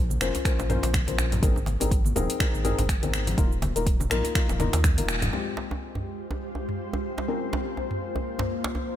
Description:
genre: afro house.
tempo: 123 BPM.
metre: 4/4.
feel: swing 56% on 16ths.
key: F minor.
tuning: A4 = 439 Hz.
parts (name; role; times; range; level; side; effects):
warm sub bass; bass; 0.0-5.3 s; Eb1 to Eb2; -28 LUFS; equal; sidechain pumping.
afro-pop drum kit; drums; 0.1-8.5 s; finger snaps, hi-hat, shaker, toms; -30 LUFS; right 1 dB; studio reverb.
congas; percussion; 0.1-5.3 s; none; -34 LUFS; left 4 dB; none.
felt-muted upright piano; stabs; 0.2-9.0 s; Ab3 to C5; -31 LUFS; left 5 dB; sidechain pumping, digital delay.
djembe; percussion; 0.4-8.9 s; none; -34 LUFS; right 2 dB; none.
electronic kick drum; drums; 0.5-5.0 s; none; -24 LUFS; equal; studio reverb.
ethereal airy pad; sustained chords; 5.9-9.0 s; Ab3 to C5; -32 LUFS; left 1 dB; ensemble chorus, built-in reverb, sidechain pumping.
room: light reverb, digital ambience.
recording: none.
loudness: -24 LUFS.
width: side -11 dB against mid.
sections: 0.0-5.3 A section; 5.3-9.0 B section.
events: band accent 5.1.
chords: 0.0 Bbmadd9; 1.4 Abadd9; 3.4 Ebsus2; 5.3 Fmadd9; 7.3 Bbmadd9.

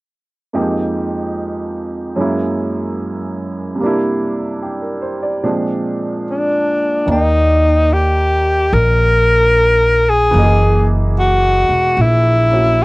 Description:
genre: jazz ballad.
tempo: 74 BPM.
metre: 4/4.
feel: swing 66% on 8ths.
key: Eb major.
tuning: A4 = 440 Hz.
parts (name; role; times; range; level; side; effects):
clear upright piano; accompaniment; 0.5-12.8 s; F2 to G5; -19 LUFS; right 1 dB; cassette tape.
clear alto saxophone; melody; 6.3-12.8 s; D4 to Bb4; -13 LUFS; left 1 dB; cassette tape.
upright bass; bass; 7.1-12.8 s; Fb1 to Eb2; -15 LUFS; equal; none.
room: moderate booth ambience, RT60 0.2 s.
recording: home recording on cassette.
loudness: -13 LUFS.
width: side -22 dB against mid.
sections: 0.5-7.1 A section; 7.1-12.8 B section.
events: none.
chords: 0.5 Fm11; 2.2 Gb7; 3.8 C7; 5.4 Bb7; 7.1 Ebmaj7; 10.3 Gb13.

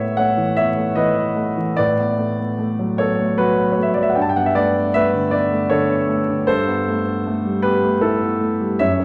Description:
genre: classical, impressionist solo piano.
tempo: 76 BPM.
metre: 3/4.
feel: rubato.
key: unclear.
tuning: A4 = 440 Hz.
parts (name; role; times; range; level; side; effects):
warm concert grand piano; solo; 0.0-9.0 s; F#2 to A5; -19 LUFS; equal; none.
room: moderate scoring stage reverb, RT60 1.7 s.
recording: vinyl crackle.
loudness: -19 LUFS.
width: mono.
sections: 0.0-9.0 A section.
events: none.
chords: 0.0 Aadd9; 1.8 Bm7/A; 4.2 Gadd9; 6.5 Am9/G.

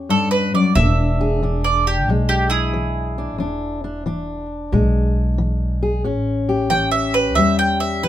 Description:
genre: acoustic country blues, solo or duo.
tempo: 91 BPM.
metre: 4/4.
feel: swing 67% on 8ths.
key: E mixolydian.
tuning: A4 = 440 Hz.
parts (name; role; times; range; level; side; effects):
fingerpicked steel-string acoustic guitar; accompaniment; 0.0-8.1 s; E2 to G#4; -21 LUFS; left 3 dB; none.
upright bass; bass; 0.0-8.1 s; E1 to E2; -21 LUFS; equal; none.
bowl-back mandolin; melody; 0.1-8.1 s; E4 to G5; -20 LUFS; right 3 dB; none.
room: light reverb.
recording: minimal, uncompressed stereo recording.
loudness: -16 LUFS.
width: side -12 dB against mid.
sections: 0.0-8.1 A section.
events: mandolin solo 0.0-8.1.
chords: 0.0 A7; 0.8 E7; 6.0 A7.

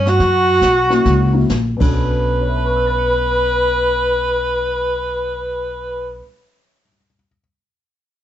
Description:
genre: jazz, small-group swing and bop.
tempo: 129-145 BPM.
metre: 4/4.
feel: swing 67% on 8ths.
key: B minor.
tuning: A4 = 438 Hz.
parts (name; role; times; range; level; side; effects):
warm tenor saxophone; melody; 0.0-6.2 s; C#4 to B4; -17 LUFS; left 1 dB; none.
breathy trumpet; second line; 0.0-6.2 s; F#4 to B4; -23 LUFS; right 5 dB; none.
upright bass; bass; 0.0-6.2 s; A#1 to G2; -20 LUFS; equal; none.
jazz brush drum kit; drums; 0.1-1.9 s; brushed snare drum, crash cymbal, hi-hat, kick drum, snare drum; -24 LUFS; equal; none.
dark grand piano; accompaniment; 0.9-7.4 s; B2 to C#7; -22 LUFS; left 4 dB; none.
room: moderate studio reverb, RT60 0.8 s.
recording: nothing above 7.9 kHz.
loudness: -14 LUFS.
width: side -11 dB against mid.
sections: 0.0-2.0 A section; 2.0-5.7 B section.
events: slowing down 0.0-2.0.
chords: 0.2 F#7; 1.7 Bm7.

